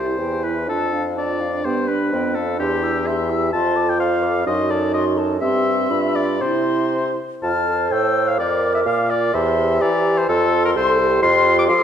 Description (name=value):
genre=quick classical-period movement for wind quintet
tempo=126 BPM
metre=2/4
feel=rubato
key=C major, F major from 7.4 s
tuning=A4 = 440 Hz
part: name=bright silver concert flute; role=melody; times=0.0-11.8 s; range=E5 to F6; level=-28 LUFS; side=left 5 dB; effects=none
part: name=clear oboe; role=second line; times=0.0-11.8 s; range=G4 to D6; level=-21 LUFS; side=left 3 dB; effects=none
part: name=mellow French horn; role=accompaniment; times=0.0-11.8 s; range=C4 to Bb4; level=-24 LUFS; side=equal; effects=none
part: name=mellow clarinet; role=accompaniment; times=0.0-11.8 s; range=B3 to C5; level=-26 LUFS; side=right 7 dB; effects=none
part: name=warm bassoon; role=bass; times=0.0-11.8 s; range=C2 to F3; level=-22 LUFS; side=right 2 dB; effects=none
room=wet recital hall reverb, RT60 1.6 s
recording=dark, warm production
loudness=-16 LUFS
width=side -8 dB against mid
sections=0.0-7.4 A section; 7.4-11.8 B section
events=none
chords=0.2 C/E; 0.7 Dm/F; 1.7 G; 2.1 G7/F; 2.6 C/E; 3.5 Dm7/F; 4.5 F#dim7; 5.4 C/G; 5.9 G7; 6.4 C; 7.4 F; 8.4 Bb/F; 9.3 C7/E; 10.3 F; 11.2 Dm7/F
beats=0.19 | 0.69 1.17 | 1.65 2.13 | 2.60 3.07 | 3.53 4.00 | 4.46 4.94 | 5.42 5.91 | 6.42 6.93 | 7.43 7.91 | 8.38 8.86 | 9.34 9.81 | 10.29 10.76 | 11.22 11.69